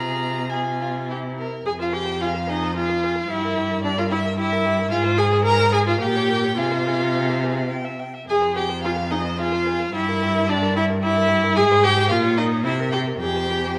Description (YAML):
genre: quick classical-period movement for string quartet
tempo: 101-113 BPM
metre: 3/4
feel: rubato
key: F minor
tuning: A4 = 436 Hz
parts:
  - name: rich violin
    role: melody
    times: 0.0-13.8 s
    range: G4 to Bb5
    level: -33 LUFS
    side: equal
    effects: none
  - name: rich violin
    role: second line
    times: 0.0-13.8 s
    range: F4 to Bb5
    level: -30 LUFS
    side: equal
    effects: none
  - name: rich viola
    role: accompaniment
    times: 0.0-13.8 s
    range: D4 to Bb4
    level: -24 LUFS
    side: equal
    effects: none
  - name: rich cello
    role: bass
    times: 0.0-13.8 s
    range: F2 to C3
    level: -27 LUFS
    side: equal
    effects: none
room: wet recital hall reverb, RT60 1.6 s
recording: none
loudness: -21 LUFS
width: mono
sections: 0.0-1.7 A section; 1.7-13.8 B section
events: none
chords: 0.0 Fm/C; 1.1 C; 1.7 Fm; 3.3 Edim/G; 4.9 Ab69; 6.0 Bbm; 6.6 Fm/C; 7.7 C; 8.3 Fm; 9.9 Edim/G; 11.6 Abmaj7; 12.1 Bbm; 12.6 C7; 13.2 Fm